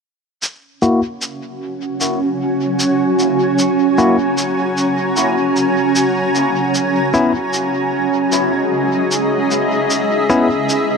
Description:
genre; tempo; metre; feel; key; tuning
ambient dub; 76 BPM; 4/4; swing 56% on 16ths; unclear; A4 = 442 Hz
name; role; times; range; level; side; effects
granular cloud pad; sustained chords; 1.4-11.0 s; C#4 to A#5; -15 LUFS; right 1 dB; built-in reverb
cabasa; drums; 0.4-10.9 s; none; -23 LUFS; equal; dub echo
barky tine electric piano; stabs; 0.8-10.5 s; A#3 to F#4; -20 LUFS; left 2 dB; low-pass filter, dub echo
room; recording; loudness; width
light reverb; dark, warm production; -14 LUFS; side -5 dB against mid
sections
0.4-11.0 A section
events
filter sweep on ambient pad 0.4-11.0; filter sweep on tine electric piano 0.4-11.0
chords
0.4 F#; 6.7 C#m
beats
| 0.43 1.22 2.01 2.80 | 3.59 4.38 5.17 5.95 | 6.74 7.53 8.32 9.11 | 9.90 10.69

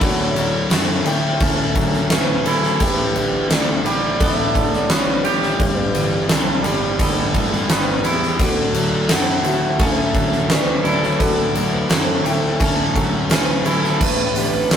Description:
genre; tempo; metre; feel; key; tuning
rock, shoegaze and dream pop; 86 BPM; 4/4; straight; unclear; A4 = 445 Hz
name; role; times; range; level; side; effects
mellow horn-like synth lead; melody; 0.0-14.8 s; A4 to F#5; -26 LUFS; right 1 dB; chorus
fingerpicked twelve-string acoustic guitar; arpeggios; 0.0-14.8 s; F#4 to G5; -25 LUFS; equal; none
raw garage guitar; riff; 0.0-14.8 s; G2 to G4; -25 LUFS; left 3 dB; overdrive
twangy electric guitar; riff; 0.0-14.8 s; G2 to G4; -24 LUFS; right 4 dB; none
fuzz picked electric bass; bass; 0.0-14.8 s; G1 to D3; -25 LUFS; equal; overdrive
huge arena drum kit; drums; 0.0-14.8 s; crash cymbal, hi-hat, kick drum, snare drum; -19 LUFS; equal; none
tambourine; percussion; 0.0-14.8 s; none; -38 LUFS; left 6 dB; none
room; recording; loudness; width
wet studio reverb, RT60 0.6 s; rough rehearsal-room recording; -16 LUFS; side -8 dB against mid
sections
0.0-14.0 A section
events
none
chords
0.0 Dmaj9; 2.8 A9sus4; 5.6 G6; 8.4 Dmaj9; 14.0 A9sus4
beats
| 0.01 0.71 1.41 2.11 | 2.81 3.50 4.20 4.90 | 5.60 6.30 7.00 7.70 | 8.40 9.10 9.80 10.50 | 11.20 11.90 12.61 13.31 | 14.01 14.71

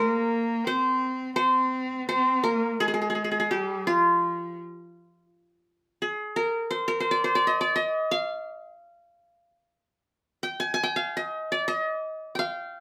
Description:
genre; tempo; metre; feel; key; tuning
Arabic maqam ensemble; 84 BPM; 4/4; straight; F maqam rast; A4 = 435 Hz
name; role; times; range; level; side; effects
qanun; melody; 0.0-12.8 s; F4 to Ab5+50c; -27 LUFS; equal; none
rich cello; second line; 0.0-4.6 s; F3 to C4; -32 LUFS; equal; none
room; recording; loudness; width
moderate studio reverb, RT60 0.6 s; band playing live in one room; -26 LUFS; mono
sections
0.0-5.6 A section; 5.6-12.8 B section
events
none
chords
none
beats
0.65 1.36 2.07 | 2.79 3.50 4.21 4.92 | 5.64 6.35 7.07 7.78 | 8.49 9.21 9.92 10.63 | 11.34 12.06 12.77

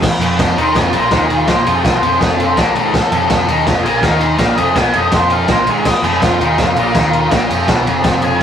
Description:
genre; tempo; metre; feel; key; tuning
garage rock duo or trio; 165 BPM; 4/4; straight; unclear; A4 = 442 Hz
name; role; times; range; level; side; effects
fuzz guitar; riff; 0.0-8.4 s; F2 to Eb4; -17 LUFS; equal; distortion
overdriven picked electric bass; bass; 0.0-8.4 s; F1 to Eb2; -24 LUFS; equal; none
crunchy breakbeat drum kit; drums; 0.0-8.4 s; crash cymbal, kick drum, ride cymbal, snare drum; -14 LUFS; equal; none
octave-fuzz lead guitar; melody; 0.6-8.4 s; F4 to C6; -17 LUFS; left 1 dB; distortion
room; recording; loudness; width
light reverb; rough rehearsal-room recording; -11 LUFS; side -8 dB against mid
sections
0.0-8.4 A section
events
lead electric guitar solo 0.0-8.4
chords
none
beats
| 0.02 0.39 0.75 1.12 | 1.48 1.84 2.21 2.57 | 2.94 3.30 3.67 4.03 | 4.39 4.76 5.12 5.49 | 5.85 6.21 6.58 6.94 | 7.31 7.67 8.04 8.40

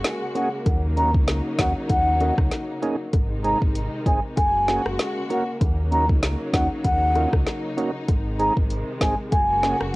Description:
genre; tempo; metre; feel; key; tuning
dancehall; 97 BPM; 4/4; swing 56% on 16ths; Eb dorian; A4 = 441 Hz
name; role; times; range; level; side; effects
warm studio string section; sustained chords; 0.0-10.0 s; C3 to Gb4; -30 LUFS; left 1 dB; sidechain pumping, cassette tape
sub bass with octave; bass; 0.0-9.9 s; Gb1 to Eb2; -26 LUFS; equal; none
afro-pop drum kit; drums; 0.0-9.9 s; hi-hat, kick drum, rim click, snare drum; -22 LUFS; equal; cassette tape
bongos; percussion; 0.0-9.9 s; none; -33 LUFS; left 6 dB; none
mellow hollow concert flute; melody; 0.4-9.8 s; Gb5 to Bb5; -24 LUFS; equal; cassette tape, analog delay
tonewheel organ; accompaniment; 0.4-9.8 s; Ab3 to Bb4; -27 LUFS; right 3 dB; chorus vibrato, sidechain pumping, cassette tape
room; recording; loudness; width
light reverb; home recording on cassette; -20 LUFS; side -21 dB against mid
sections
0.0-10.0 A section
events
none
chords
0.0 Gbadd9; 0.7 Ebm7; 3.1 Ab; 4.4 Gbadd9; 5.6 Ebm7; 8.1 Ab; 9.3 Gbadd9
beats
0.04 | 0.66 1.28 1.90 2.52 | 3.14 3.75 4.37 4.99 | 5.61 6.23 6.85 7.47 | 8.09 8.70 9.32 9.94

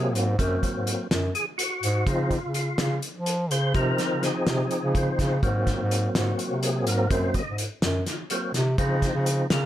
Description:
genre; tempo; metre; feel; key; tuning
progressive instrumental, band music in an uneven meter; 250 BPM (eighths); 7/8; straight; Ab mixolydian; A4 = 438 Hz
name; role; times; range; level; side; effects
percussive tonewheel organ; accompaniment; 0.0-9.7 s; F3 to Eb5; -27 LUFS; equal; overdrive, chorus vibrato, fast rotary speaker
warm bass clarinet; bass; 0.0-9.7 s; Gb2 to F3; -25 LUFS; equal; none
cloth-damped thuddy drum kit; drums; 0.2-9.6 s; hi-hat, kick drum, snare drum; -28 LUFS; equal; none
room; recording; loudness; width
light reverb; none; -23 LUFS; side -12 dB against mid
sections
0.0-9.7 A section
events
tonewheel organ solo 0.0-9.7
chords
0.0 Ab7; 2.1 Dbmaj7; 5.4 Ab7; 8.8 Dbmaj7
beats
0.15 | 0.39 0.63 0.87 1.11 1.35 1.59 1.83 | 2.07 2.31 2.55 2.79 3.03 3.27 3.51 | 3.75 3.99 4.23 4.47 4.71 4.95 5.19 | 5.43 5.67 5.91 6.15 6.39 6.63 6.87 | 7.11 7.35 7.59 7.83 8.07 8.31 8.55 | 8.79 9.03 9.27 9.51

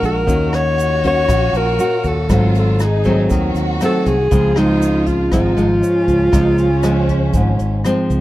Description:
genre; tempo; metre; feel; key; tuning
bossa nova; 119 BPM; 4/4; straight; Db major; A4 = 439 Hz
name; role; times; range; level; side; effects
breathy alto saxophone; melody; 0.0-7.8 s; Eb4 to Db5; -18 LUFS; equal; plate reverb
warm symphonic violin section; second line; 0.0-8.2 s; C4 to Gb4; -25 LUFS; right 1 dB; none
nylon-string guitar; accompaniment; 0.0-8.2 s; Ab2 to Gb4; -18 LUFS; equal; none
fingered electric bass; bass; 0.0-8.2 s; Ab1 to Eb2; -18 LUFS; equal; none
jazz brush drum kit; drums; 0.0-8.2 s; hi-hat, kick drum, rim click; -22 LUFS; equal; none
egg shaker; percussion; 0.0-8.2 s; none; -37 LUFS; right 5 dB; none
room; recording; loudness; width
light reverb; dark, warm production; -13 LUFS; side -16 dB against mid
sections
0.0-8.2 A section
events
none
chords
0.3 Ebm7; 2.3 Ab7b9; 4.3 Dbmaj7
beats
| 0.28 0.79 1.29 1.80 | 2.30 2.81 3.31 3.82 | 4.32 4.83 5.33 5.84 | 6.34 6.84 7.35 7.85

